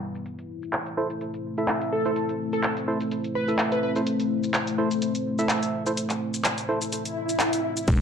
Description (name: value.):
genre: bass house.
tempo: 126 BPM.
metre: 4/4.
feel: swing 54% on 16ths.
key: unclear.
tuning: A4 = 440 Hz.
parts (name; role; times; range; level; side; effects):
dark analog pad; sustained chords; 0.0-8.0 s; G3 to C5; -28 LUFS; left 2 dB; chorus, sidechain pumping.
big-room dance drum kit; drums; 0.1-8.0 s; crash cymbal, handclaps, hi-hat, shaker; -28 LUFS; equal; low-pass filter on hats, low-pass filter on cymbals, low-pass filter on perc, low-pass filter on snare.
percussive organ stab; stabs; 1.0-6.8 s; E4 to E5; -29 LUFS; right 2 dB; chorus, sidechain pumping, digital delay.
plucky unison lead; melody; 1.9-3.9 s; A4 to B4; -28 LUFS; right 2 dB; wide subtle chorus, digital delay.
swell and impact; sound effects; 7.1-8.0 s; none; -27 LUFS; equal; none.
growling FM bass; bass; 7.9-8.0 s; E1; -23 LUFS; equal; sidechain pumping.
electronic kick drum; drums; 7.9-8.0 s; none; -21 LUFS; equal; overdrive.
hi-hat; drums; 7.9-8.0 s; none; -49 LUFS; left 4 dB; none.
room: moderate digital room reverb, RT60 1.0 s, digital ambience.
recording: dark, warm production, low-pass filter.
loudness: -24 LUFS.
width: side -7 dB against mid.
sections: 0.0-7.9 A section.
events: filter sweep on drum 0.0-7.9; filter sweep 0.0-7.9; swell 7.1-7.9.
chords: 0.3 Am.